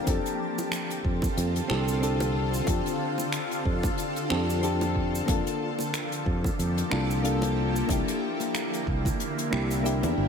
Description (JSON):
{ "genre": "sunset chillout", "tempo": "92 BPM", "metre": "4/4", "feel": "swing 56% on 16ths", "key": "F major", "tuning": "A4 = 440 Hz", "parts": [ { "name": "soft electric-piano-like synth keys", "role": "accompaniment", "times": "0.0-10.3 s", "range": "Bb3 to A4", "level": "-31 LUFS", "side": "moving between left 6 dB and right 4 dB", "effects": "chorus, auto-pan, vintage 12-bit sampler grit, ping-pong delay, shimmer reverb" }, { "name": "shimmering ambient pad", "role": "sustained chords", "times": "0.0-10.3 s", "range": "D3 to A4", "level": "-31 LUFS", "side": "left 1 dB", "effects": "chorus, built-in reverb, phaser, shimmer reverb" }, { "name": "sustaining fretless electric bass", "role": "bass", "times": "0.1-10.3 s", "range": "G1 to F2", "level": "-28 LUFS", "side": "equal", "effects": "none" }, { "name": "electronic kick drum", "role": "drums", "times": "0.1-9.2 s", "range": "none", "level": "-29 LUFS", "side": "equal", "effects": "none" }, { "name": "jazz brush drum kit", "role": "drums", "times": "0.1-10.2 s", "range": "cabasa, finger snaps, hi-hat", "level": "-35 LUFS", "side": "equal", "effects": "none" }, { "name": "bongos", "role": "percussion", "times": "0.1-10.1 s", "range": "none", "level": "-37 LUFS", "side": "right 2 dB", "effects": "none" } ], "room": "moderate lush hall reverb, RT60 1.9 s, small room ambience", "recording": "none", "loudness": "-25 LUFS", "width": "side -6 dB against mid", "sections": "0.0-10.3 A section", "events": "kick drops out 9.2-10.3", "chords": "0.1 F6; 5.3 Gm9/F; 7.9 C9" }